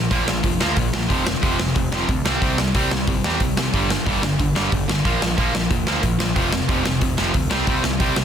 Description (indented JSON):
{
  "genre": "punk rock",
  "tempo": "182 BPM",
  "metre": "4/4",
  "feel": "straight",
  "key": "unclear",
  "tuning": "A4 = 435 Hz",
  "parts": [
    { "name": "overdriven semi-hollow guitar", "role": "riff", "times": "0.0-8.2 s", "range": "F2 to C4", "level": "-24 LUFS", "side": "right 12 dB", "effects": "none" },
    { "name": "tight distorted guitar", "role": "riff", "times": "0.0-8.2 s", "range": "F2 to C4", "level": "-24 LUFS", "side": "left 10 dB", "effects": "distortion" },
    { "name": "growling picked electric bass", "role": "bass", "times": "0.0-8.2 s", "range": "F1 to E2", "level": "-26 LUFS", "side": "equal", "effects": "overdrive" },
    { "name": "big rock drum kit", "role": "drums", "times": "0.1-8.2 s", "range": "hi-hat, kick drum, snare drum", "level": "-22 LUFS", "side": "equal", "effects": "none" }
  ],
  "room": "light reverb",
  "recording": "dense, heavily limited modern master",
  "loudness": "-18 LUFS",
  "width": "side -8 dB against mid",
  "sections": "0.0-8.2 A section",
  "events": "none",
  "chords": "0.0 Bb5; 1.1 F5; 2.3 C5; 3.7 G5; 5.1 Bb5; 6.4 F5; 7.5 C5"
}